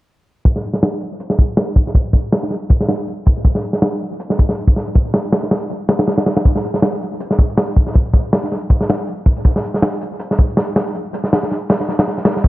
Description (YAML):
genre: drum and bass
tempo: 160 BPM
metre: 4/4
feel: swing 55% on 16ths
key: none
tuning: none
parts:
  - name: crunchy breakbeat drum kit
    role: drums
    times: 0.5-12.5 s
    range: hi-hat, kick drum, snare drum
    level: -14 LUFS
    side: equal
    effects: analog delay
room: light reverb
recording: echo-heavy mix, low-pass filter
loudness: -14 LUFS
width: side -17 dB against mid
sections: 0.5-12.5 A section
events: filter sweep 0.5-12.5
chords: none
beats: | 0.45 0.82 1.20 1.57 | 1.95 2.33 2.70 3.08 | 3.45 3.83 4.20 4.58 | 4.95 5.33 5.70 6.08 | 6.45 6.83 7.20 7.58 | 7.95 8.32 8.70 9.07 | 9.45 9.82 10.20 10.57 | 10.95 11.32 11.70 12.07 | 12.45